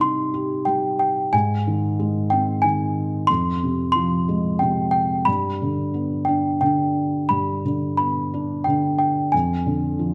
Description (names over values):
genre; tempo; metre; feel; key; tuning
children's music, lullaby; 90 BPM; 3/4; rubato; unclear; A4 = 439 Hz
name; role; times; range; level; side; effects
small celesta; melody; 0.0-10.1 s; G5 to C6; -25 LUFS; equal; none
felt-muted upright piano; accompaniment; 0.0-10.1 s; F2 to G4; -24 LUFS; equal; none
room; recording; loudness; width
moderate recital hall reverb, RT60 1.4 s; none; -22 LUFS; mono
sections
0.0-10.1 A section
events
none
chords
0.0 Cm; 1.3 Ab; 3.3 Fm; 5.3 G; 9.3 Ddim/F